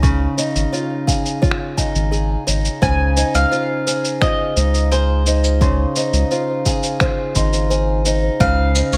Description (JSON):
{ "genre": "folktronica", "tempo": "86 BPM", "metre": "4/4", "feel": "straight", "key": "Db major", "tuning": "A4 = 440 Hz", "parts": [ { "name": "music box", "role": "second line", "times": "0.0-9.0 s", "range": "Ab4 to Db6", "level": "-26 LUFS", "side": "equal", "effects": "tape echo" }, { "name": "fingerpicked acoustic archtop guitar", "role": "arpeggios", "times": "0.0-9.0 s", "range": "Db3 to Ab4", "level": "-25 LUFS", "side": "equal", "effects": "tape echo" }, { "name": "round analog bass", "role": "bass", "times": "0.0-9.0 s", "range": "Ab1 to Db2", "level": "-20 LUFS", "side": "equal", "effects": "none" }, { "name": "electronic cabasa and finger snaps", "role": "drums", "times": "0.0-9.0 s", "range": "none", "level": "-26 LUFS", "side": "equal", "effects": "studio reverb" }, { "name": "electronic kick drum", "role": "drums", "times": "0.0-8.5 s", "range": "none", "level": "-22 LUFS", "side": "equal", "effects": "studio reverb" }, { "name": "mandolin", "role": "melody", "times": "2.8-9.0 s", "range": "C5 to Ab5", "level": "-24 LUFS", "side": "equal", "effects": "tape echo" } ], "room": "light reverb, small room reverb", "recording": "none", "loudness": "-18 LUFS", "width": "mono", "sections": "0.0-9.0 A section", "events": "none", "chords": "0.0 Dbadd9; 8.4 Fm7/Db" }